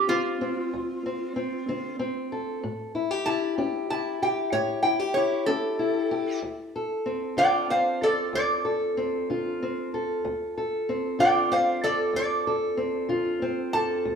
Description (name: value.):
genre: acoustic country blues, solo or duo.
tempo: 63 BPM (dotted quarters).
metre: 12/8.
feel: straight.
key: D minor.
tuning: A4 = 440 Hz.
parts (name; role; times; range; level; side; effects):
lap resonator guitar; melody; 0.0-14.0 s; F4 to A5; -24 LUFS; right 1 dB; none.
fingerpicked steel-string acoustic guitar; accompaniment; 0.0-14.2 s; D2 to A4; -27 LUFS; left 2 dB; none.
room: wet stone room reverb, RT60 1.3 s.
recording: band playing live in one room.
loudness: -24 LUFS.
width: side -6 dB against mid.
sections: 0.0-6.4 A section; 6.4-14.2 B section.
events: resonator guitar played with a steel bar solo 6.4-14.2.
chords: 0.0 Dm7; 2.6 A7; 6.4 Dm7.